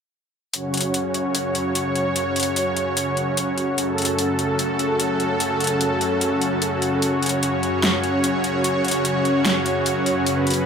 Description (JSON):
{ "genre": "heavy wobble dubstep", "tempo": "148 BPM", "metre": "4/4", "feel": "swing 54% on 16ths, half-time", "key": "F# minor", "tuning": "A4 = 440 Hz", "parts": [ { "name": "supersaw pad", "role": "sustained chords", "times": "0.5-10.7 s", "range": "F#2 to C#5", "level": "-20 LUFS", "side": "equal", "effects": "none" }, { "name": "dubstep drum kit", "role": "drums", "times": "0.5-10.6 s", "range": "hi-hat, snare drum", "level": "-23 LUFS", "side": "left 1 dB", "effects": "none" } ], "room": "light reverb", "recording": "none", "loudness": "-19 LUFS", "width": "side -6 dB against mid", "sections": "0.5-10.7 A section", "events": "none", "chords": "0.5 F#5" }